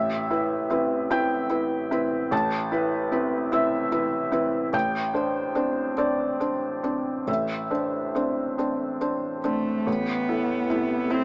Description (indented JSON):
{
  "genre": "neoclassical piano and strings",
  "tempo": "46-50 BPM (dotted quarters)",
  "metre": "6/8",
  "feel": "rubato",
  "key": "A minor",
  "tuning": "A4 = 439 Hz",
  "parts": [
    { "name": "felt-muted upright piano", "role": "accompaniment", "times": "0.0-11.2 s", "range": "A1 to A5", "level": "-23 LUFS", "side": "equal", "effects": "none" },
    { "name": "rich cello", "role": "second line", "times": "9.4-11.2 s", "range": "A3 to C4", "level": "-25 LUFS", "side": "equal", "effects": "none" },
    { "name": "warbly tape-like pad", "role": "sustained chords", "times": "10.9-11.2 s", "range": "none", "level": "barely audible", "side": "none", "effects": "none" }
  ],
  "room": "light reverb",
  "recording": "worn, warbling old tape, cassette tape, warbly pitch drift, small speaker sound",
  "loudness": "-23 LUFS",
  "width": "side -31 dB against mid",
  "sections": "0.0-9.9 A section; 9.9-11.2 A section",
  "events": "none",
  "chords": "0.0 Amadd9; 4.7 Cadd9/A; 9.9 Amadd9"
}